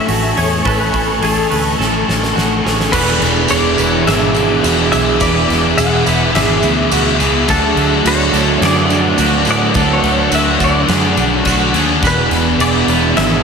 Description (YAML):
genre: rock, shoegaze and dream pop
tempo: 106 BPM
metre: 4/4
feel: straight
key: E mixolydian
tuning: A4 = 438 Hz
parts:
  - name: direct-recorded clean electric guitar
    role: melody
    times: 0.0-13.4 s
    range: A4 to F#5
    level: -20 LUFS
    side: left 2 dB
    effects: ensemble chorus, tape echo
  - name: ethereal airy pad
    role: sustained chords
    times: 0.0-13.4 s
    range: G#4 to D6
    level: -21 LUFS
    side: right 2 dB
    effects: ensemble chorus, built-in reverb
  - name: semi-hollow electric guitar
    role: arpeggios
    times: 0.0-13.4 s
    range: F#4 to B4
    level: -22 LUFS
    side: right 8 dB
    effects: lush chorus, tape echo
  - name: crunchy overdriven guitar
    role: riff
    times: 0.0-13.4 s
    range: A2 to A4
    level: -20 LUFS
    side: right 8 dB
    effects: reverse reverb
  - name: thick fuzz guitar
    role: riff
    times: 0.0-13.4 s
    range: E2 to D4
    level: -19 LUFS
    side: left 9 dB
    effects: distortion, ensemble chorus
  - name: vintage muted fingered electric bass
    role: bass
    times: 0.1-13.4 s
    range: E1 to A2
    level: -20 LUFS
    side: equal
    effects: none
  - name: huge arena drum kit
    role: drums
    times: 0.1-13.3 s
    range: crash cymbal, hi-hat, kick drum, snare drum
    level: -18 LUFS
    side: left 1 dB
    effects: none
  - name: crunchy overdriven guitar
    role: riff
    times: 2.9-13.4 s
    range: E2 to D4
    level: -19 LUFS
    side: left 1 dB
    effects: lush chorus
  - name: tambourine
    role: percussion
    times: 2.9-13.0 s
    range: none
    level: -27 LUFS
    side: right 11 dB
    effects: none
room: wet plate reverb, RT60 1.6 s, small room ambience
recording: dreamy mix soaked in reverb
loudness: -11 LUFS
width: side -6 dB against mid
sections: 0.0-2.9 A section; 2.9-13.4 B section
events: drum fill 1.8-2.9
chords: 0.0 Amaj7; 2.9 E7; 7.5 Dmaj7; 12.0 E7